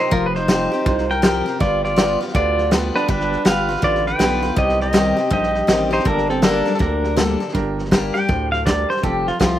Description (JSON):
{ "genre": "honky-tonk and classic country", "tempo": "162 BPM", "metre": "4/4", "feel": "swing 63% on 8ths", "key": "unclear", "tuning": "A4 = 441 Hz", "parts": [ { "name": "pedal steel guitar", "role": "melody", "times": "0.0-9.6 s", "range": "C4 to G5", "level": "-19 LUFS", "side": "equal", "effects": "slapback echo" }, { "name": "picked steel-string acoustic guitar", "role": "accompaniment", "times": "0.0-9.6 s", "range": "F2 to A4", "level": "-23 LUFS", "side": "left 4 dB", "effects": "slapback echo" }, { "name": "warm upright piano", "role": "accompaniment", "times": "0.0-9.6 s", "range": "Bb3 to C5", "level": "-28 LUFS", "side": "right 7 dB", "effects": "slapback echo" }, { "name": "saturated sub bass", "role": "bass", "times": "0.1-9.6 s", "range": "F1 to D2", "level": "-25 LUFS", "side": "right 1 dB", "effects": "none" }, { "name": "vintage drum kit", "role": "drums", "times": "0.1-9.5 s", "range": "hi-hat, kick drum, snare drum", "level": "-20 LUFS", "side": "equal", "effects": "none" } ], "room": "little or no reverb", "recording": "recorded outdoors, with no room sound", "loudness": "-16 LUFS", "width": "side -12 dB against mid", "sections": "0.0-7.5 A section; 7.5-9.6 B section", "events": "pedal steel guitar solo 7.5-9.6", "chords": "0.0 Fsus2; 1.6 G7; 4.6 Cm; 6.1 Gmadd9; 9.0 F" }